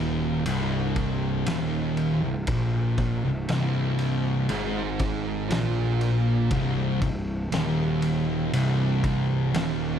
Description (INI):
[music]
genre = stoner and doom metal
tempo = 59 BPM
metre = 4/4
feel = straight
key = C minor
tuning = A4 = 440 Hz
[part]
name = thick fuzz guitar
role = riff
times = 0.0-10.0 s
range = C2 to Bb2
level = -28 LUFS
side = left 8 dB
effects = distortion
[part]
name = thick fuzz guitar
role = riff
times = 0.0-10.0 s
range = C2 to Bb2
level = -27 LUFS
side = right 7 dB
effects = distortion
[part]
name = fuzz picked electric bass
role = bass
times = 0.0-10.0 s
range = C1 to Bb1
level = -31 LUFS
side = equal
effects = overdrive
[part]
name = oversized low-tuned drum kit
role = drums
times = 0.5-9.8 s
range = kick drum, ride cymbal, snare drum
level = -32 LUFS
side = equal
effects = none
[sound]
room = light reverb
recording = dark, warm production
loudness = -23 LUFS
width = side -8 dB against mid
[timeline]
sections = 0.0-10.0 A section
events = none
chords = 0.0 Cm